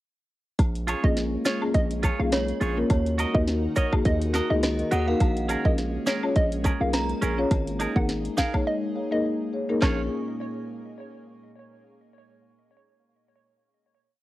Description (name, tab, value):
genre	dancehall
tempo	104 BPM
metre	4/4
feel	swing 56% on 16ths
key	Bb minor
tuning	A4 = 439 Hz
part	airy breathy pad	sustained chords	0.6-10.1 s	Bb2 to Bb4	-35 LUFS	right 1 dB	chorus, sidechain pumping, cassette tape
part	hard-hitting 808-style bass	bass	0.6-10.1 s	Ab1 to Eb2	-27 LUFS	equal	none
part	island pop drum kit	drums	0.6-10.0 s	handclaps, hi-hat, kick drum, rim click, snare drum	-25 LUFS	equal	none
part	woodblock and cabasa	percussion	0.6-10.1 s	none	-36 LUFS	left 2 dB	none
part	marimba with medium mallets	accompaniment	0.9-10.1 s	Bb3 to Db5	-28 LUFS	left 2 dB	sidechain pumping, cassette tape
part	clean electric guitar	arpeggios	0.9-10.0 s	Db4 to Eb5	-31 LUFS	right 4 dB	cassette tape
part	hollow square pluck	melody	1.0-10.1 s	Db5 to Gb5	-32 LUFS	equal	chorus, cassette tape, tape echo
part	synth chime	second line	2.3-10.1 s	Db5 to Db6	-34 LUFS	right 2 dB	ensemble chorus, cassette tape, tape echo
room	little or no reverb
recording	home recording on cassette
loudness	-22 LUFS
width	side -16 dB against mid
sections	0.6-9.8 chorus; 9.8-12.1 final chord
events	silent gap 8.7-9.8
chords	0.6 Bbm7; 2.9 Ebm; 5.2 Bbm7; 7.5 Absus2; 9.8 Bbm7